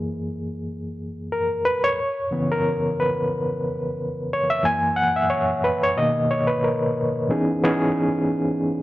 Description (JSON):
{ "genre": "soul", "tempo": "90 BPM", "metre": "4/4", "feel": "swing 54% on 16ths", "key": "C# dorian", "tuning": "A4 = 440 Hz", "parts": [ { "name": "overdriven reed electric piano", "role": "solo", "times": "0.0-8.8 s", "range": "F#2 to G#5", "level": "-20 LUFS", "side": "equal", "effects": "fast tremolo" } ], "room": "light reverb, digital ambience", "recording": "none", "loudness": "-20 LUFS", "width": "side -16 dB against mid", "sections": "0.0-7.3 A section; 7.3-8.8 B section", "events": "reed electric piano solo 0.0-7.3", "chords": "0.0 F#9; 2.0 C#m7; 4.6 F#7; 6.0 Bmaj7; 7.3 C#m9", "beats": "0.65 1.31 | 1.98 2.65 3.31 3.98 | 4.65 5.31 5.98 6.65 | 7.31 7.98 8.64" }